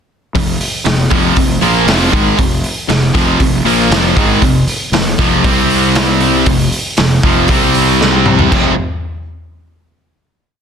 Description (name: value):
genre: hard rock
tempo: 118 BPM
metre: 4/4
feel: straight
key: F minor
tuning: A4 = 439 Hz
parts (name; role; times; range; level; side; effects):
- sludgy distorted guitar; riff; 0.3-8.7 s; F2 to C4; -16 LUFS; left 9 dB; overdrive
- distorted electric guitar; riff; 0.4-8.7 s; F2 to C4; -18 LUFS; right 1 dB; distortion
- tight distorted guitar; riff; 0.4-8.7 s; F2 to C4; -16 LUFS; right 12 dB; distortion
- fuzz fingered electric bass; bass; 0.4-8.8 s; F1 to C2; -18 LUFS; equal; overdrive
- raw garage drum kit; drums; 0.4-8.6 s; crash cymbal, hi-hat, kick drum, snare drum, toms; -15 LUFS; equal; none
room: light reverb, small room ambience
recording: dense, heavily limited modern master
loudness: -10 LUFS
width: side -7 dB against mid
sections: 0.3-8.5 riff; 8.5-10.6 final chord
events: drum fill 8.0-8.5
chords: 0.3 Fm; 5.4 C5; 6.5 F5; 7.5 C5; 8.5 F5